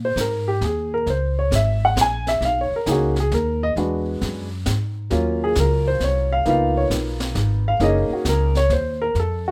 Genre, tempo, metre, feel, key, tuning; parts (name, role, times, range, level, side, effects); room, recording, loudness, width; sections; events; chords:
jazz piano trio; 134 BPM; 3/4; swing 66% on 8ths; Bb minor; A4 = 439 Hz
warm upright piano; melody; 0.0-9.5 s; Gb3 to Ab5; -23 LUFS; equal
upright bass; bass; 0.0-9.5 s; Gb1 to Bb2; -24 LUFS; equal
jazz brush drum kit; drums; 0.2-9.5 s; brushed snare drum, hi-hat, snare drum; -32 LUFS; equal
little or no reverb; -21 LUFS; mono
0.0-9.5 A section
0.0 Bb7sus4; 1.1 Bbm9b5; 2.4 Bmaj13; 3.8 E9; 5.1 Ebm9; 6.5 Db13; 7.8 Gb69